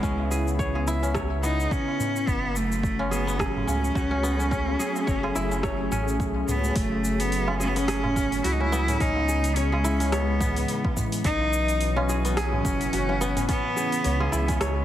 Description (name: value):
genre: organic downtempo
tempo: 107 BPM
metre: 4/4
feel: swing 57% on 16ths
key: unclear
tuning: A4 = 440 Hz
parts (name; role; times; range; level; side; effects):
- clear cello; melody; 0.0-14.6 s; G#3 to E4; -28 LUFS; equal; vintage 12-bit sampler grit, tape echo
- warm analog pad; sustained chords; 0.0-14.8 s; B2 to G#4; -31 LUFS; equal; chorus, sidechain pumping
- kora; arpeggios; 0.0-14.8 s; B3 to C#5; -30 LUFS; equal; ping-pong delay
- warm sub bass; bass; 0.0-14.8 s; F#1 to C#2; -28 LUFS; equal; sidechain pumping
- deep house drum kit; drums; 0.0-14.7 s; hi-hat, rim click, shaker; -34 LUFS; equal; overdrive
- electronic kick drum; drums; 0.0-14.6 s; none; -28 LUFS; equal; overdrive
- tabla; percussion; 0.2-14.6 s; none; -36 LUFS; right 1 dB; none
room: light reverb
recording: heavily compressed radio sound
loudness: -22 LUFS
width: side -12 dB against mid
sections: 0.0-6.8 A section; 6.8-14.8 B section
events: none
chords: 0.0 C#m7; 2.3 F#m7; 9.0 C#m9; 11.2 Bsus4; 13.5 C#m7